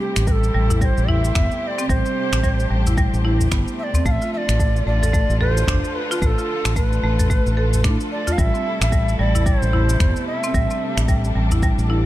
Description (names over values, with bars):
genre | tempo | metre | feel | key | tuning
organic downtempo | 111 BPM | 4/4 | swing 60% on 16ths | A minor | A4 = 441 Hz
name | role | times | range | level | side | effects
bright reedy Native American-style cedar flute | melody | 0.0-11.3 s | G4 to F5 | -26 LUFS | right 1 dB | ping-pong delay
bright symphonic string section | sustained chords | 0.0-12.1 s | C3 to C5 | -29 LUFS | equal | sidechain pumping
fretless electric bass | bass | 0.2-12.1 s | G1 to A2 | -19 LUFS | equal | none
electronic finger snaps and cabasa | drums | 0.2-11.9 s | none | -29 LUFS | equal | none
marimba with hard mallets | arpeggios | 0.3-12.1 s | G3 to A4 | -25 LUFS | equal | tape echo
electronic kick drum | drums | 0.3-11.8 s | none | -21 LUFS | equal | none
udu | percussion | 0.7-11.6 s | none | -23 LUFS | left 1 dB | none
room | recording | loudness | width
small room ambience | none | -17 LUFS | side -15 dB against mid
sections
0.0-12.1 A section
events
none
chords
0.0 Am7; 4.1 Bm7b5; 8.4 Am7